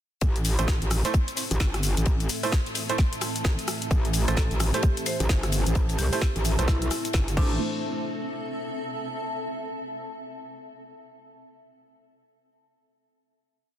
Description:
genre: bass house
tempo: 130 BPM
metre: 4/4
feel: swing 61% on 16ths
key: A minor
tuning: A4 = 440 Hz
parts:
  - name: dark analog pad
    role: sustained chords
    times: 1.4-7.6 s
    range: A3 to C5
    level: -37 LUFS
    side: right 4 dB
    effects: chorus, sidechain pumping
  - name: metallic wobble bass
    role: bass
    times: 0.2-7.6 s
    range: G1 to C2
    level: -25 LUFS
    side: equal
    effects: chorus, sidechain pumping
  - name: damped 70s drum kit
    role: drums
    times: 0.2-7.3 s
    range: ride cymbal, snare drum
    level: -40 LUFS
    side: left 4 dB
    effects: none
  - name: electronic kick drum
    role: drums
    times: 0.2-7.5 s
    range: none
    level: -23 LUFS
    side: equal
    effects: none
  - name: garage drum kit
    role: drums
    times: 0.2-7.5 s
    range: crash cymbal, hi-hat, rim click, shaker, snare drum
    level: -31 LUFS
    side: left 2 dB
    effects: none
  - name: granular cloud pad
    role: texture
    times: 1.1-9.4 s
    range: C4 to A5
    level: -35 LUFS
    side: left 1 dB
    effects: built-in reverb, sidechain pumping
  - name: clear baby grand piano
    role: stabs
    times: 0.6-7.6 s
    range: A3 to C5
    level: -33 LUFS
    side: right 4 dB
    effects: sidechain pumping, tape echo
  - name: marimba with hard mallets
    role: melody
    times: 4.3-7.5 s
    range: D4 to C5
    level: -35 LUFS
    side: left 1 dB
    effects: tape echo
room: light reverb, small room ambience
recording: dense, heavily limited modern master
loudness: -23 LUFS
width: side -11 dB against mid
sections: 0.2-7.6 drop; 7.6-9.4 final chord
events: drop 0.2-7.6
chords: 0.2 Am

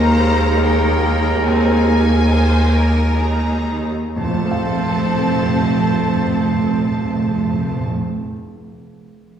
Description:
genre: cinematic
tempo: 59-80 BPM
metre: 3/4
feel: rubato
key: unclear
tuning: A4 = 440 Hz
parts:
  - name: rich studio violin section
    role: melody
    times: 0.0-7.8 s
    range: G5 to Bb5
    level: -26 LUFS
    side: left 2 dB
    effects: none
  - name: clear oboe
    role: second line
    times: 0.0-7.8 s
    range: Bb4 to C5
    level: -29 LUFS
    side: equal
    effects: none
  - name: clear studio violin section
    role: second line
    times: 0.0-7.8 s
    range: Ab4 to C5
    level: -30 LUFS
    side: left 1 dB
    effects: none
  - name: mellow clarinet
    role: second line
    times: 0.0-7.8 s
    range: Ab4 to A4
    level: -28 LUFS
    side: right 1 dB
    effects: none
  - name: silver concert flute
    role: second line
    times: 0.0-7.8 s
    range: A5 to Bb5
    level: -30 LUFS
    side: right 1 dB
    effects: none
  - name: felt-muted upright piano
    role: accompaniment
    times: 0.0-9.4 s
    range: Eb2 to F5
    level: -27 LUFS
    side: equal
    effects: none
  - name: warm studio viola section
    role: accompaniment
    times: 0.0-7.8 s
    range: Bb3 to Eb4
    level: -27 LUFS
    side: equal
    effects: none
  - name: mellow French horn section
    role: sustained chords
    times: 0.0-7.8 s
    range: Ab3 to C4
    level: -23 LUFS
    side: equal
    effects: none
  - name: concert harp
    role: arpeggios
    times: 0.0-8.3 s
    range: Eb3 to F5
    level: -31 LUFS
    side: left 3 dB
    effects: none
  - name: rich studio cello section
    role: bass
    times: 0.0-7.8 s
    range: Eb2 to F2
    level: -21 LUFS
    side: right 1 dB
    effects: none
  - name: rich studio double bass section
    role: bass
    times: 0.0-7.8 s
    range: F1 to Eb2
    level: -21 LUFS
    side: right 1 dB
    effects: none
  - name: timpani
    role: percussion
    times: 4.2-8.0 s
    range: F2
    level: -21 LUFS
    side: right 2 dB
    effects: none
room: wet scoring stage reverb, RT60 1.7 s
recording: heard from further back in the room, small room ambience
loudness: -15 LUFS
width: side -8 dB against mid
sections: 0.0-4.2 A section; 4.2-7.1 B section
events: slowing down 0.0-4.2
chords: 0.0 Ebsus4; 4.2 F

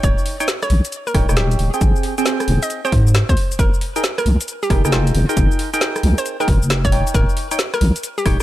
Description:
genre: UK garage, two-step garage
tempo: 135 BPM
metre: 4/4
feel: swing 66% on 16ths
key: F minor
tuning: A4 = 444 Hz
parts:
  - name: hollow square pluck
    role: melody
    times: 0.0-8.4 s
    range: F4 to Eb5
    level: -25 LUFS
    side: right 1 dB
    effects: chorus, digital delay
  - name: percussive organ stab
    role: stabs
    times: 0.0-8.4 s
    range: C4 to G5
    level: -23 LUFS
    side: right 2 dB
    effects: chorus, phaser, digital delay
  - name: deep soft wobble bass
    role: bass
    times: 0.0-8.4 s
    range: Eb1 to Ab2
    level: -16 LUFS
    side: equal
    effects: chorus
  - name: electronic kick drum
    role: drums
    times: 0.0-8.4 s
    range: none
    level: -18 LUFS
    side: equal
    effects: none
  - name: garage drum kit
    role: drums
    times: 0.0-8.4 s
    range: cabasa, hi-hat, rim click, snare drum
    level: -23 LUFS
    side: equal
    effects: none
room: little or no reverb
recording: none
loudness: -15 LUFS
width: side -15 dB against mid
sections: 0.0-8.4 A section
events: none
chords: 0.0 Eb7; 1.8 Abmaj7; 3.6 Fm11; 6.9 Eb7

